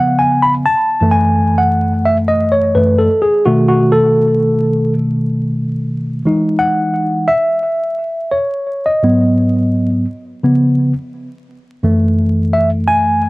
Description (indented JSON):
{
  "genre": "hip hop",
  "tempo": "86 BPM",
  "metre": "4/4",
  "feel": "swing 57% on 16ths",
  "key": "E major",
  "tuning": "A4 = 440 Hz",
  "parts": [
    { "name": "mellow tine electric piano", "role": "solo", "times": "0.0-13.3 s", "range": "F#2 to B5", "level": "-12 LUFS", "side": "equal", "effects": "medium stereo tremolo, cassette tape" }
  ],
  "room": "moderate booth ambience, RT60 0.2 s",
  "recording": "home recording on cassette, vinyl crackle",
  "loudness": "-12 LUFS",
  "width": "side -22 dB against mid",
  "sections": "0.0-6.3 A section; 6.3-13.3 B section",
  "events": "tine electric piano solo 0.0-6.3, 6.3-13.3",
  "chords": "0.0 C#7; 0.7 F#m7; 3.5 B7; 6.3 Emaj9; 9.0 G#m7; 10.4 C#7; 11.8 F#m9",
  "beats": "| 0.67 1.37 2.07 2.77 | 3.46 4.16 4.86 5.56 | 6.25 6.95 7.65 8.35 | 9.04 9.74 10.44 11.14 | 11.84 12.53 13.23"
}